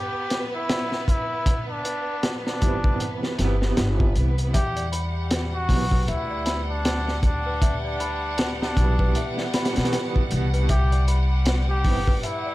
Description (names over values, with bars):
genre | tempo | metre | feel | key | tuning
trip hop | 78 BPM | 4/4 | swing 59% on 16ths | E minor | A4 = 440 Hz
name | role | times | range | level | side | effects
trumpet with cup mute | melody | 0.0-12.5 s | D4 to G4 | -29 LUFS | equal | vintage 12-bit sampler grit, tape echo
rich studio violin section | sustained chords | 0.0-12.5 s | G3 to F#5 | -33 LUFS | equal | none
crunchy breakbeat drum kit | drums | 0.3-12.4 s | hi-hat, kick drum, snare drum | -24 LUFS | equal | none
clear upright piano | accompaniment | 2.6-12.0 s | B2 to B3 | -30 LUFS | right 3 dB | tremolo, tape echo
upright bass | bass | 2.6-12.2 s | G1 to B2 | -24 LUFS | equal | none
worn celesta | arpeggios | 4.5-12.5 s | B4 to B5 | -34 LUFS | left 3 dB | tape echo
room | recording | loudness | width
studio ambience | none | -21 LUFS | side -17 dB against mid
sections
0.0-12.5 A section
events
none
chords
0.0 Cmaj7; 4.5 Em; 10.7 Cmaj7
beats
0.69 | 1.46 2.23 3.00 3.77 | 4.54 5.31 6.08 6.85 | 7.62 8.38 9.15 9.92 | 10.69 11.46 12.23